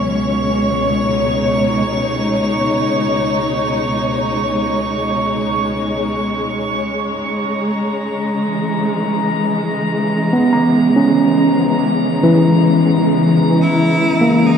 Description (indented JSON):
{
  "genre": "ambient",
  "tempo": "free time",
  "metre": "none",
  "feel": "none",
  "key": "C# dorian",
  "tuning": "A4 = 442 Hz",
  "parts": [
    { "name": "warm studio string section", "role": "sustained chords", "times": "0.0-14.6 s", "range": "C#2 to C#5", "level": "-17 LUFS", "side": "equal", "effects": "none" },
    { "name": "drifting glass-harmonics texture", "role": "texture", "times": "0.0-14.6 s", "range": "A#5 to C#6", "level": "-23 LUFS", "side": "right 2 dB", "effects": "chorus, built-in reverb" },
    { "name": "overdriven tine electric piano", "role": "arpeggios", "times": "10.3-14.6 s", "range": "E3 to A#5", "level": "-12 LUFS", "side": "equal", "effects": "diffuse ambient delay" },
    { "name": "bright cello", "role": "melody", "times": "13.6-14.6 s", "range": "D#4 to E4", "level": "-17 LUFS", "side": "equal", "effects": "none" }
  ],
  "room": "wet huge ambient reverb, RT60 7.7 s",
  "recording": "none",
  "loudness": "-14 LUFS",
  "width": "side -7 dB against mid",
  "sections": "0.0-6.9 A section; 6.9-14.6 B section",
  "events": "none",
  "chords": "0.0 Bsus2/C#; 6.9 C#m7",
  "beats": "free time"
}